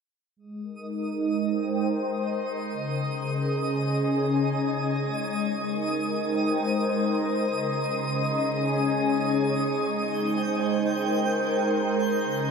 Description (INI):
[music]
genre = ambient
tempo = 76 BPM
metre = 3/4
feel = straight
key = Ab major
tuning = A4 = 441 Hz
[part]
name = warm analog pad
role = sustained chords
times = 0.4-12.5 s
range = Db3 to Ab5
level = -25 LUFS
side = equal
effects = chorus
[part]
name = organ-like drone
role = drone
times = 2.1-12.5 s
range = Ab3 to Eb4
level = -37 LUFS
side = right 2 dB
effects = ensemble chorus, built-in reverb
[part]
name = twinkling granular texture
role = texture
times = 0.8-12.5 s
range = Eb5 to G6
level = -31 LUFS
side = equal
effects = built-in reverb
[sound]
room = wet shimmer reverb, RT60 7.4 s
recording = none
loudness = -24 LUFS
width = side -5 dB against mid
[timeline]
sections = 0.4-12.5 A section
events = fade-in on synth drone 0.4-12.5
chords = 0.4 Abmaj7; 2.7 Db5; 5.1 Abmaj7; 7.5 Db5; 9.9 Abmaj7